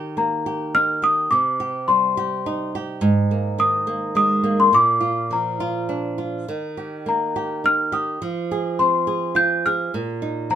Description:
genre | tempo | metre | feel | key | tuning
children's music, lullaby | 104 BPM | 3/4 | rubato | Eb major | A4 = 436 Hz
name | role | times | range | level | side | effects
flamenco guitar | accompaniment | 0.0-10.6 s | Ab2 to Ab4 | -24 LUFS | right 3 dB | none
worn celesta | melody | 0.2-10.6 s | Bb5 to G6 | -19 LUFS | left 2 dB | none
room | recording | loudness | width
light reverb | minimal, uncompressed stereo recording | -18 LUFS | side -10 dB against mid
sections
0.0-10.6 A section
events
none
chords
0.0 Eb; 1.3 Cmadd9; 3.0 Absus2; 4.7 Bb; 6.5 Eb; 8.2 Fm; 9.9 Bbsus4

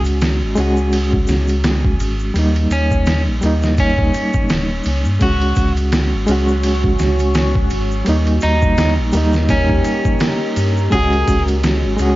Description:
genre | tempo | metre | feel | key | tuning
trip hop | 84 BPM | 4/4 | swing 57% on 16ths | unclear | A4 = 440 Hz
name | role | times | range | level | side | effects
overdriven reed electric piano | accompaniment | 0.0-12.2 s | G3 to F#4 | -19 LUFS | equal | fast tremolo, tape echo
round analog bass | bass | 0.0-12.2 s | D#1 to G2 | -18 LUFS | equal | none
egg shaker | percussion | 0.0-12.2 s | none | -39 LUFS | left 2 dB | none
trip hop sampler-style drum kit | drums | 0.1-12.2 s | kick drum, ride cymbal, snare drum | -20 LUFS | equal | overdrive
electric guitar at the edge of break-up | melody | 2.7-11.4 s | C#4 to G#4 | -23 LUFS | equal | vintage 12-bit sampler grit, dub echo
deep dark ambient pad | sustained chords | 6.1-12.2 s | F#4 to C#6 | -25 LUFS | equal | chorus, built-in reverb
room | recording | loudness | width
digital ambience | vinyl crackle, nothing above 7.5 kHz | -14 LUFS | side -17 dB against mid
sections
0.0-12.2 A section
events
none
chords
0.0 C#sus4; 2.4 D#; 5.2 C#sus4; 8.1 D#; 10.9 C#sus4

